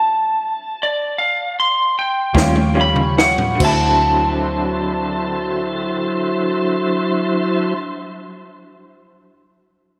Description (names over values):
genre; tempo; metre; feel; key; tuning
slow blues; 46-56 BPM (dotted quarters); 12/8; straight; D mixolydian; A4 = 440 Hz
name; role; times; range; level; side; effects
electric slide guitar; melody; 0.0-7.8 s; D5 to C6; -21 LUFS; equal; slapback echo
bright upright piano; accompaniment; 2.3-7.8 s; F#4 to F5; -29 LUFS; equal; slapback echo
electric guitar through a small old amp; accompaniment; 2.3-7.8 s; D3 to F4; -26 LUFS; equal; tremolo, slapback echo
tonewheel organ; sustained chords; 2.3-7.7 s; F3 to Db5; -24 LUFS; equal; slow rotary speaker, chorus vibrato
vintage muted fingered electric bass; bass; 2.3-7.7 s; D2 to Eb2; -24 LUFS; equal; none
compact cocktail drum kit; drums; 2.3-3.8 s; crash cymbal, kick drum, snare drum, toms; -22 LUFS; equal; none
room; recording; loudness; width
wet lush hall reverb, RT60 2.8 s; big arena sound; -18 LUFS; mono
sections
0.0-3.6 A section; 3.6-8.9 B section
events
slowing down 0.0-3.6; electric slide guitar solo 0.0-3.6; stop 0.0-2.3; drum fill 2.3-3.6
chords
0.0 N.C.; 2.3 Eb9; 3.6 D9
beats
0.08 1.17 2.34 | 3.60 4.91 6.23 7.54